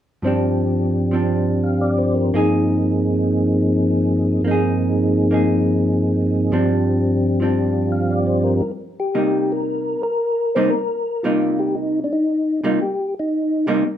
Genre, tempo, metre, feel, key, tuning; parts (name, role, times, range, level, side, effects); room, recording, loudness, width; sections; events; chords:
jazz; 115 BPM; 4/4; swing 69% on 8ths; C minor; A4 = 440 Hz
percussive tonewheel organ; melody; 0.2-13.7 s; G2 to F5; -18 LUFS; equal; slow rotary speaker, chorus vibrato, plate reverb
vintage hollow-body jazz guitar; accompaniment; 0.2-13.8 s; G2 to Ab4; -23 LUFS; right 1 dB
wet club reverb, RT60 0.6 s; -17 LUFS; side -10 dB against mid
0.2-8.6 A section; 8.6-14.0 B section
0.2 G7sus4; 2.3 Fm11/G; 6.5 G7sus4; 8.6 Cm7